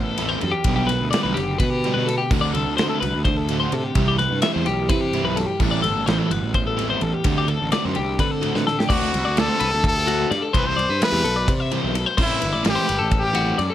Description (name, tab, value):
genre	math rock and midwest emo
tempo	255 BPM (eighths)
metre	7/8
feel	straight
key	unclear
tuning	A4 = 441 Hz
part	mellow electric guitar	accompaniment	0.0-10.5 s	D2 to G4	-28 LUFS	right 5 dB	phaser
part	twelve-string electric guitar	arpeggios	0.0-13.7 s	F#4 to E5	-24 LUFS	left 5 dB	none
part	fuzz picked electric bass	bass	0.0-13.7 s	F#1 to D3	-25 LUFS	equal	overdrive
part	crunchy overdriven guitar	riff	0.2-13.6 s	D3 to G4	-26 LUFS	right 1 dB	none
part	modern studio drum kit	drums	0.2-13.7 s	crash cymbal, kick drum, ride cymbal, snare drum	-25 LUFS	equal	none
part	brilliant trumpet	melody	8.9-13.6 s	E4 to C5	-23 LUFS	left 1 dB	none
room	light reverb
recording	none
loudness	-18 LUFS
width	side -12 dB against mid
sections	0.0-8.9 A section; 8.9-13.7 B section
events	drum fill 8.5-8.9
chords	0.0 Am9; 0.7 Gmaj7; 2.3 D7; 4.0 Cmaj7; 5.6 Am9; 7.3 D7sus4; 8.9 D7; 10.5 Cmaj7; 12.2 Am9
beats	0.18 0.41 | 0.65 0.89 1.12 1.36 1.60 1.83 2.07 | 2.31 2.54 2.78 3.02 3.25 3.49 3.72 | 3.96 4.20 4.43 4.67 4.90 5.14 5.37 | 5.61 5.84 6.08 6.32 6.55 6.79 7.02 | 7.25 7.49 7.72 7.96 8.19 8.43 8.66 | 8.90 9.13 9.37 9.60 9.84 10.07 10.30 | 10.54 10.77 11.01 11.24 11.48 11.71 11.94 | 12.18 12.41 12.65 12.88 13.12 13.35 13.58